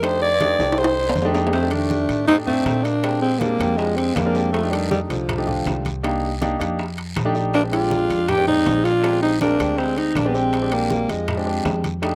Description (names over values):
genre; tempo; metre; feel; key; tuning
Afro-Cuban jazz; 160 BPM; 4/4; straight; unclear; A4 = 438 Hz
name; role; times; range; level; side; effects
growling alto saxophone; melody; 0.0-11.8 s; F3 to D5; -22 LUFS; equal; none
warm concert grand piano; accompaniment; 0.0-12.2 s; Eb3 to D5; -27 LUFS; equal; slapback echo
upright bass; bass; 0.0-12.2 s; Bb1 to Bb2; -29 LUFS; equal; none
bongos; percussion; 0.0-12.2 s; none; -35 LUFS; equal; none
congas; percussion; 0.0-12.2 s; none; -33 LUFS; equal; none
guiro; percussion; 0.0-12.2 s; none; -41 LUFS; equal; none
timbales; percussion; 0.0-12.2 s; none; -30 LUFS; equal; none
clear tenor saxophone; second line; 1.5-11.8 s; D3 to D4; -34 LUFS; equal; slapback echo
room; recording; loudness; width
little or no reverb; recorded outdoors, with no room sound; -20 LUFS; mono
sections
0.0-1.5 A section; 1.5-12.2 B section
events
alto saxophone solo 0.0-1.5; drum fill 0.6-1.5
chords
0.0 F13; 3.0 Bb13; 4.5 F13; 6.0 Cm7; 6.8 F13; 7.5 Bb13